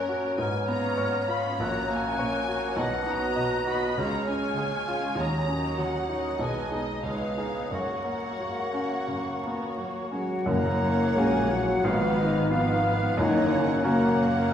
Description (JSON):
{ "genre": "classical, romantic movement for piano and orchestra", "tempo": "84-103 BPM", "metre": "4/4", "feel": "rubato", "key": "F# major", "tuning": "A4 = 441 Hz", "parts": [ { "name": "clear baby grand piano", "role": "melody", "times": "0.0-14.5 s", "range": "F#1 to D#5", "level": "-29 LUFS", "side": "equal", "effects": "none" }, { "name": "rich symphonic violin section", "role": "melody", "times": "0.0-14.5 s", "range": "A#4 to B5", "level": "-35 LUFS", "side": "left 2 dB", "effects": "none" }, { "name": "silver concert flute", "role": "second line", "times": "0.0-14.5 s", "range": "A#4 to F#6", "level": "-35 LUFS", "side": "left 1 dB", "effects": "none" }, { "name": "warm clarinet", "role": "second line", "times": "0.0-14.5 s", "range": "A#4 to D#5", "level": "-36 LUFS", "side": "left 1 dB", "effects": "none" }, { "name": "warm symphonic violin section", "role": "second line", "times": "0.0-14.5 s", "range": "C#4 to D#5", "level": "-37 LUFS", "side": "left 1 dB", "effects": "none" }, { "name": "mellow bassoon", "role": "accompaniment", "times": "0.0-14.5 s", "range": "F#3 to C#4", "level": "-35 LUFS", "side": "right 1 dB", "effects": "none" }, { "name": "warm symphonic viola section", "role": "accompaniment", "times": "0.0-14.5 s", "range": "F#3 to F#4", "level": "-36 LUFS", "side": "right 1 dB", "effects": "none" }, { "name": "dark chamber cello section", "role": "bass", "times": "0.4-14.5 s", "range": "F#2 to A#3", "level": "-34 LUFS", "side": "equal", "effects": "none" }, { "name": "warm French horn section", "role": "sustained chords", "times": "10.1-14.5 s", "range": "A#3 to A#4", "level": "-28 LUFS", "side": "left 2 dB", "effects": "none" }, { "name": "mellow cor anglais", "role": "second line", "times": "10.5-14.5 s", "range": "F5 to F#5", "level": "-36 LUFS", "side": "right 2 dB", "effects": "none" }, { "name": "mellow tuba", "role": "bass", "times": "10.5-14.5 s", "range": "F#1 to A#1", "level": "-33 LUFS", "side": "right 2 dB", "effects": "none" }, { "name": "rich chamber double bass section", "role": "bass", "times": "10.5-14.5 s", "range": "F#1 to A#1", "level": "-34 LUFS", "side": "right 2 dB", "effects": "none" }, { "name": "timpani", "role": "percussion", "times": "10.5-11.5 s", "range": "F#2", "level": "-34 LUFS", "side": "left 2 dB", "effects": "none" } ], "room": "wet recital hall reverb, RT60 1.5 s", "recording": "recorded in a church or concert hall, vinyl crackle", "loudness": "-24 LUFS", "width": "side -9 dB against mid", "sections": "0.0-10.5 A section; 10.5-14.5 B section", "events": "none", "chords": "0.4 C#7/G#; 1.6 F#/A#; 2.8 B; 4.0 C#; 5.2 D#m7; 6.4 G#m/B; 7.1 C#9; 7.7 F#; 11.8 Fdim/Ab; 13.2 F#" }